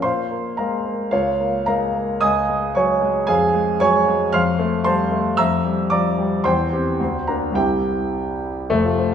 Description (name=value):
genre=classical, virtuoso piano study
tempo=104-115 BPM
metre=2/4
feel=rubato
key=Bb minor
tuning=A4 = 441 Hz
part: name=clear concert grand piano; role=solo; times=0.0-9.1 s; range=F1 to F6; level=-17 LUFS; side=equal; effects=none
room=wet recital hall reverb, RT60 1.6 s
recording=recorded in a church or concert hall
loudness=-17 LUFS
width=side -8 dB against mid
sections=0.0-8.7 A section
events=none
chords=0.0 Bb5; 1.1 Bbm/Db; 2.2 Db5; 3.3 Db/F; 4.3 F; 5.4 Gm7/F; 6.5 C/E; 7.0 Bb/D; 7.6 C